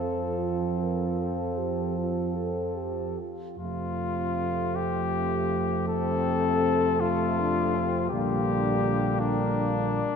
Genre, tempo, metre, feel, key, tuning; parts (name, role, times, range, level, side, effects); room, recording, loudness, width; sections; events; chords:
classical, hymn-like piece for brass band; 48-55 BPM (dotted quarters); 12/8; rubato; F major; A4 = 440 Hz
mellow cornet; melody; 0.0-10.2 s; D4 to A4; -29 LUFS; left 6 dB
mellow French horn section; second line; 0.0-10.1 s; G3 to Bb4; -33 LUFS; right 6 dB
bright trombone section; accompaniment; 0.0-10.2 s; A3 to D4; -34 LUFS; left 4 dB
clear trombone; accompaniment; 0.0-10.0 s; C3 to F3; -33 LUFS; right 3 dB
dark tuba; bass; 0.0-10.0 s; Bb1 to F2; -31 LUFS; right 2 dB
wet cathedral reverb, RT60 4.9 s; dark, warm production; -25 LUFS; side -6 dB against mid
0.0-3.6 A section; 3.6-10.2 A section
0.0 F; 8.1 Gm/Bb